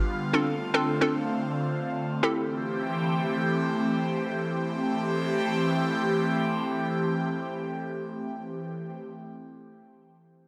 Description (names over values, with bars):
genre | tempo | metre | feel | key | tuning
pop | free time | none | none | unclear | A4 = 442 Hz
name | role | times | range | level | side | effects
hollow square pluck | accompaniment | 0.0-2.5 s | C4 to A4 | -29 LUFS | equal | chorus
airy breathy pad | sustained chords | 0.0-9.0 s | D3 to G4 | -29 LUFS | equal | chorus, phaser
room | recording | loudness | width
moderate plate reverb, RT60 1.3 s | dense, heavily limited modern master | -28 LUFS | mono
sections
0.0-4.7 A section; 4.7-9.0 B section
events
none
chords
0.3 Dm7; 2.2 C6